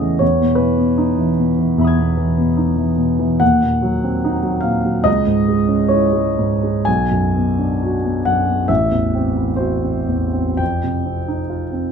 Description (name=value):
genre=classical, impressionist solo piano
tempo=56-77 BPM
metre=4/4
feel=rubato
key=unclear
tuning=A4 = 439 Hz
part: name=clear concert grand piano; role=solo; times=0.0-11.9 s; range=A1 to G#6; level=-15 LUFS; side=equal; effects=none
room=light reverb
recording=close, detailed microphones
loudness=-15 LUFS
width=side -6 dB against mid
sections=0.0-11.9 A section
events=none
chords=0.2 Emaj7; 3.4 Ebm6; 5.1 Dbm; 6.9 Bm6; 8.7 Am6; 10.6 Fsus2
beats=| 0.21 1.00 1.78 2.58 | 3.41 4.24 5.07 5.92 | 6.87 7.80 8.69 9.59 | 10.61 11.49